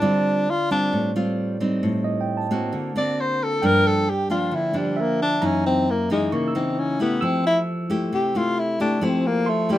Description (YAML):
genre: bossa nova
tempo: 134 BPM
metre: 4/4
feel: straight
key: F major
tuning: A4 = 438 Hz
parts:
  - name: mellow tenor saxophone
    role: melody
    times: 0.0-9.8 s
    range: G3 to D5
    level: -22 LUFS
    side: left 2 dB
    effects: none
  - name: barky tine electric piano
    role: accompaniment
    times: 0.0-9.8 s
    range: D5 to E6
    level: -30 LUFS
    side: right 5 dB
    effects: overdrive
  - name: nylon-string guitar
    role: accompaniment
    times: 0.0-9.8 s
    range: Gb2 to G4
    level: -23 LUFS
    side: equal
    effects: none
room: light reverb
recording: minimal, uncompressed stereo recording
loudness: -20 LUFS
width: side -13 dB against mid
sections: 0.0-9.8 A section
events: tenor saxophone solo 0.0-9.8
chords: 0.0 Dm7; 1.8 Am7b5; 2.7 D7b13; 3.6 Gm7; 5.4 Gb6; 7.2 Fmaj9